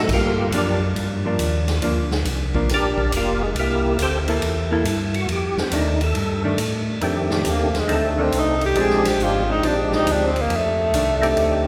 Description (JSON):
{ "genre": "soul jazz organ trio", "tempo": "138 BPM", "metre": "4/4", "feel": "swing 67% on 8ths", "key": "F mixolydian", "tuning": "A4 = 440 Hz", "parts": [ { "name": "percussive tonewheel organ", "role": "melody", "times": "0.0-11.7 s", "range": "Eb3 to D5", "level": "-26 LUFS", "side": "equal", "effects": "slow rotary speaker, chorus vibrato" }, { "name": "mellow tonewheel organ", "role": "bass", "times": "0.0-11.7 s", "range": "F1 to A2", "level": "-26 LUFS", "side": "equal", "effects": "slow rotary speaker" }, { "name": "swinging big-band drum kit", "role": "drums", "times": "0.1-11.5 s", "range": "crash cymbal, hi-hat, kick drum, ride cymbal, snare drum", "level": "-30 LUFS", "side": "equal", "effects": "none" }, { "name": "hollow-body jazz guitar", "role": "accompaniment", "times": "0.5-11.2 s", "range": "Eb3 to A4", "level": "-29 LUFS", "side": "equal", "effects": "none" }, { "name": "clear tenor saxophone", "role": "melody", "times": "7.5-11.7 s", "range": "Ab3 to Ab4", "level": "-22 LUFS", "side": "equal", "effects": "none" } ], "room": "wet church reverb, RT60 3.9 s", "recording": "recorded in a church or concert hall", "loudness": "-21 LUFS", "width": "mono", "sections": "0.0-7.0 A section; 7.0-11.7 A section", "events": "tonewheel organ solo 0.0-7.0; tenor saxophone solo 7.0-11.7", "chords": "0.1 Gm7; 3.6 C13; 5.3 F13; 8.8 Bb13; 10.5 F13" }